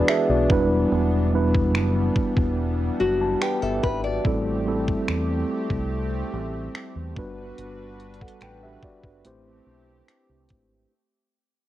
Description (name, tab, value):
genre	contemporary R&B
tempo	72 BPM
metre	4/4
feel	straight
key	A dorian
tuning	A4 = 438 Hz
part	mellow tine electric piano	accompaniment	0.0-10.9 s	G3 to A5	-25 LUFS	right 1 dB	slow stereo tremolo, cassette tape
part	lush unison pad	sustained chords	0.0-10.9 s	E3 to B4	-31 LUFS	equal	chorus, sidechain pumping, cassette tape
part	detuned 8-bit digital drum machine	drums	0.1-10.7 s	finger snaps, hi-hat, kick drum	-25 LUFS	equal	cassette tape
part	deep dub fingered electric bass	bass	0.3-10.8 s	E1 to E2	-27 LUFS	equal	none
part	nylon-string guitar	arpeggios	3.0-4.4 s	F#4 to D5	-26 LUFS	left 4 dB	cassette tape, analog delay
room	light reverb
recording	home recording on cassette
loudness	-21 LUFS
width	side -14 dB against mid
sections	0.0-10.9 A section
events	fade-out 0.0-10.9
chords	0.5 Em7; 4.2 Am7; 7.2 Gmaj7; 9.2 Am7